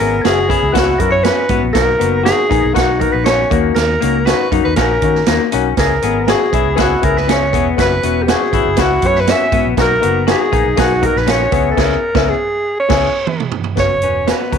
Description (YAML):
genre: uptempo 1960s-style soul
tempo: 120 BPM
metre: 4/4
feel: straight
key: unclear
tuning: A4 = 440 Hz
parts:
  - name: breathy alto saxophone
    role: melody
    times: 0.0-14.6 s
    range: F#4 to E5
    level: -17 LUFS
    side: right 2 dB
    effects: none
  - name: glockenspiel with rubber mallets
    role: second line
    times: 0.0-11.8 s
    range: F#6 to E7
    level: -25 LUFS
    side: right 2 dB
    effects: none
  - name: warm grand piano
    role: accompaniment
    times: 0.0-14.6 s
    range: A#3 to B4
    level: -19 LUFS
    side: left 13 dB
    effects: none
  - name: electric guitar through a small old amp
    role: riff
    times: 0.0-14.6 s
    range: A#3 to F#4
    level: -20 LUFS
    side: left 12 dB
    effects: none
  - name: vintage muted fingered electric bass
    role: bass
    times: 0.0-14.6 s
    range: E1 to D#3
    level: -20 LUFS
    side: right 1 dB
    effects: none
  - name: swinging big-band drum kit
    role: drums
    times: 0.0-14.6 s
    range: crash cymbal, hi-hat, kick drum, snare drum, toms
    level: -18 LUFS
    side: right 6 dB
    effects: none
room: light reverb, studio reverb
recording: 1960s-style stereo with parts hard left and right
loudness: -12 LUFS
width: side -7 dB against mid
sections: 0.0-13.8 A section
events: band accent 11.8-13.8; drum fill 12.8-13.8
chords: 0.0 F#7sus4; 1.8 Bmaj7; 3.5 D#m7; 5.8 C#m7; 7.8 F#7sus4; 9.8 Bmaj7; 11.5 C#m7; 13.8 F#sus4